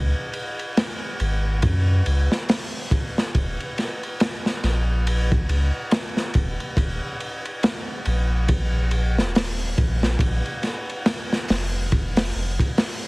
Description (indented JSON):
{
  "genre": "trip hop",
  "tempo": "70 BPM",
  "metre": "4/4",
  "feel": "swing 59% on 16ths",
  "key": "Eb minor",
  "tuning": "A4 = 439 Hz",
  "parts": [
    { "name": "warm sub bass", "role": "bass", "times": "0.0-12.6 s", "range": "Eb1 to Gb2", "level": "-22 LUFS", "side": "equal", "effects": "none" },
    { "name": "crunchy breakbeat drum kit", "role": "drums", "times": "0.3-13.0 s", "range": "hi-hat, kick drum, ride cymbal, snare drum", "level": "-22 LUFS", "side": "equal", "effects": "none" }
  ],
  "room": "little or no reverb",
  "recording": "heavily compressed radio sound, multiband compression, vinyl crackle",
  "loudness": "-20 LUFS",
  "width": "side -28 dB against mid",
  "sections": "0.0-13.1 A section",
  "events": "none",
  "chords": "none"
}